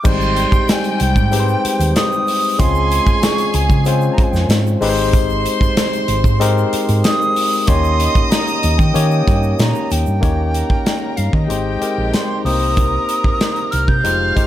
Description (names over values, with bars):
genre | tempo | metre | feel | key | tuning
lush 1970s-style soul | 94 BPM | 4/4 | straight | unclear | A4 = 440 Hz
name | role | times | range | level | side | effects
silver concert flute | melody | 0.0-14.4 s | Eb5 to G6 | -21 LUFS | right 2 dB | analog delay
barky tine electric piano | accompaniment | 0.0-14.5 s | G3 to Db5 | -20 LUFS | left 4 dB | auto-pan
tube shaker | percussion | 0.0-10.2 s | none | -38 LUFS | right 21 dB | none
warm chamber string section | second line | 0.1-14.5 s | G3 to F6 | -24 LUFS | right 1 dB | analog delay
hollow-body short-scale fingered electric bass | bass | 0.1-14.4 s | F1 to Eb3 | -17 LUFS | equal | none
modern studio drum kit | drums | 0.1-14.5 s | crash cymbal, hi-hat, kick drum, snare drum | -18 LUFS | equal | none
room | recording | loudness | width
studio reverb | none | -13 LUFS | side -12 dB against mid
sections
0.0-10.2 A section; 10.2-14.5 B section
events
none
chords
0.0 Abmaj7; 2.6 Dbmaj7; 4.8 Abmaj7; 7.7 Eb7; 11.5 Abmaj7; 12.5 Cm7